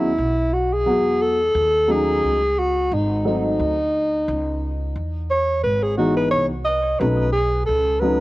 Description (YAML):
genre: hip hop, jazz-hop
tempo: 88 BPM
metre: 4/4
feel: swing 57% on 16ths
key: unclear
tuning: A4 = 436 Hz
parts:
  - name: breathy alto saxophone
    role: melody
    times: 0.0-8.2 s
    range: D#4 to D#5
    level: -20 LUFS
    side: equal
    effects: cassette tape, plate reverb, tape echo
  - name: dark grand piano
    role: accompaniment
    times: 0.0-8.2 s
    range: E3 to F#4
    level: -22 LUFS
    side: left 1 dB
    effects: cassette tape, plate reverb
  - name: upright bass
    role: bass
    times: 0.0-8.2 s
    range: G#1 to E2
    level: -25 LUFS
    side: equal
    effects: none
room: moderate booth ambience, RT60 0.2 s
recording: home recording on cassette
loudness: -18 LUFS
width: side -18 dB against mid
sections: 0.0-8.2 A section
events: alto saxophone solo 0.0-8.2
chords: 0.0 Eadd9; 1.5 D#m7b5; 2.9 G#7b9; 4.3 C#m9; 7.0 B9